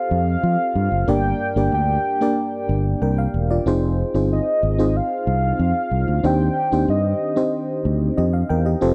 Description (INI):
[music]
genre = 1980s-style pop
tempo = 93 BPM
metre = 4/4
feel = straight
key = C minor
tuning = A4 = 440 Hz
[part]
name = warm velvety synth lead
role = melody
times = 0.0-7.8 s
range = Eb5 to G5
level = -26 LUFS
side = equal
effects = chorus, tape echo
[part]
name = FM electric piano with tremolo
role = accompaniment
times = 0.0-8.9 s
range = G2 to G5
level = -25 LUFS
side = equal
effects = none
[part]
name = fingered electric bass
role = bass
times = 0.1-8.9 s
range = E1 to F3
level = -22 LUFS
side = equal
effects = none
[sound]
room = light reverb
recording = dry, close 1970s-style studio recording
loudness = -20 LUFS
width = mono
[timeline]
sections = 0.0-8.9 A section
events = none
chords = 0.0 Fadd9; 1.1 Gm; 3.7 Fm7; 6.2 Cmadd9/Eb